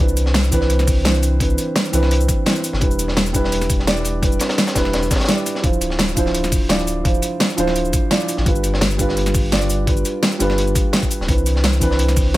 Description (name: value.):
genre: liquid drum and bass.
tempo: 170 BPM.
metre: 4/4.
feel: straight.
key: unclear.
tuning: A4 = 439 Hz.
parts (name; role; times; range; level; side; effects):
felt-muted upright piano; accompaniment; 0.0-12.4 s; E3 to D5; -21 LUFS; right 1 dB; digital delay.
saturated sub bass; bass; 0.0-12.4 s; D1 to C2; -20 LUFS; equal; none.
pop drum kit; drums; 0.1-12.4 s; cabasa, hi-hat, snare drum; -21 LUFS; equal; none.
crunchy breakbeat drum kit; drums; 0.2-12.4 s; hi-hat, snare drum; -26 LUFS; equal; high-pass filter on hats, high-pass filter on snare, high-pass filter on room.
electronic kick drum; drums; 0.5-12.2 s; none; -20 LUFS; equal; none.
room: studio reverb.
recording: none.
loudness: -15 LUFS.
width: side -16 dB against mid.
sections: 0.0-12.4 A section.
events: none.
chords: 0.0 Cmaj9; 2.8 Em7; 5.6 Dm9; 8.5 G7; 11.3 Cmaj9.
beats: 0.34 0.70 1.05 | 1.40 1.76 2.11 2.46 | 2.81 3.17 3.52 3.87 | 4.23 4.58 4.93 5.29 | 5.64 5.99 6.34 6.70 | 7.05 7.40 7.76 8.11 | 8.46 8.81 9.17 9.52 | 9.87 10.23 10.58 10.93 | 11.29 11.64 11.99 12.34.